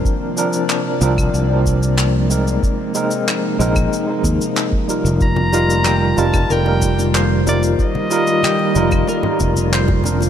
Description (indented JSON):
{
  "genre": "sunset chillout",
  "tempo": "93 BPM",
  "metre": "4/4",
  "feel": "straight",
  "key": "unclear",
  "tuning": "A4 = 440 Hz",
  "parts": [
    { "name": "barky tine electric piano", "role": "accompaniment", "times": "0.0-10.3 s", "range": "F3 to Bb4", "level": "-20 LUFS", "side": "right 1 dB", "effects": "overdrive, fast tremolo, auto-pan, ping-pong delay" },
    { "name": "airy breathy pad", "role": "sustained chords", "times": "0.0-10.3 s", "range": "C3 to D5", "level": "-22 LUFS", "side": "left 1 dB", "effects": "chorus" },
    { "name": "cabasa, claves and handclaps", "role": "drums", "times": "0.1-10.3 s", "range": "none", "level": "-24 LUFS", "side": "left 2 dB", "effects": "none" },
    { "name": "electronic kick drum", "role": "drums", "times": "0.1-10.0 s", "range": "none", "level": "-20 LUFS", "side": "equal", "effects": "overdrive" },
    { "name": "fingered electric bass", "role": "bass", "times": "1.0-10.3 s", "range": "F1 to Eb2", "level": "-17 LUFS", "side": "equal", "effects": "none" },
    { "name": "bright soprano saxophone", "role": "melody", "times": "5.2-9.7 s", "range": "D5 to Bb5", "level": "-22 LUFS", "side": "left 1 dB", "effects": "ping-pong delay" },
    { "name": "congas and bongos", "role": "percussion", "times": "5.4-10.3 s", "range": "none", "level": "-27 LUFS", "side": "left 3 dB", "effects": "none" },
    { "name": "concert harp", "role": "arpeggios", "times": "5.5-10.3 s", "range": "F4 to C5", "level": "-25 LUFS", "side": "equal", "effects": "ping-pong delay" }
  ],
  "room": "light reverb, studio reverb",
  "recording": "lossy compression artefacts",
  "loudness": "-14 LUFS",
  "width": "side -9 dB against mid",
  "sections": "0.0-10.3 A section",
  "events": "none",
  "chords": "0.1 C9sus4; 2.6 Bb9sus4; 5.2 F9sus4",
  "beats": "| 0.05 0.70 1.34 1.99 | 2.63 3.28 3.92 4.57 | 5.21 5.86 6.50 7.15 | 7.79 8.44 9.08 9.73"
}